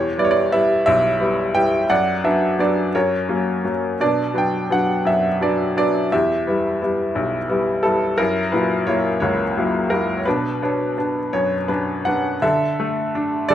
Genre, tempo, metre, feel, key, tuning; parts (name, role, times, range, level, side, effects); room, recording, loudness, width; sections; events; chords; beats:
classical, lyrical solo piano; 57 BPM (dotted quarters); 6/8; rubato; B minor; A4 = 440 Hz
bright upright piano; solo; 0.0-13.5 s; B1 to G5; -17 LUFS; equal
moderate recital hall reverb, RT60 1.3 s; -17 LUFS; side -11 dB against mid
0.0-12.4 A section; 12.4-13.5 B section
0.0 Em; 1.9 Bm/F#; 3.0 F#; 4.0 Bm; 6.1 Em; 8.2 F#7; 10.3 Bmadd9; 12.4 D5
0.87 | 1.90 2.95 | 4.01 5.08 | 6.13 7.16 | 8.19 9.22 | 10.26 11.33 | 12.42 13.50